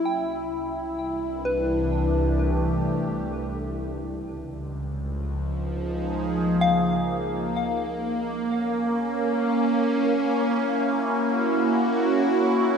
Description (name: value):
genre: ambient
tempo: free time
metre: none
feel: none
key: unclear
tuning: A4 = 440 Hz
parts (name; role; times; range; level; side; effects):
- evolving wavetable pad; sustained chords; 0.0-12.8 s; C2 to G#4; -23 LUFS; equal; phaser, built-in reverb
- soft synth bell; arpeggios; 0.0-7.9 s; B4 to G5; -30 LUFS; left 2 dB; chorus, phaser, ping-pong delay
room: wet lush hall reverb, RT60 2.8 s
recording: cassette tape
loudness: -22 LUFS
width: side -6 dB against mid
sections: 0.0-7.6 A section; 7.6-12.8 B section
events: fade-in on synth bell 0.0-7.6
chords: 0.1 Cmaj7; 3.8 C#; 7.6 F#7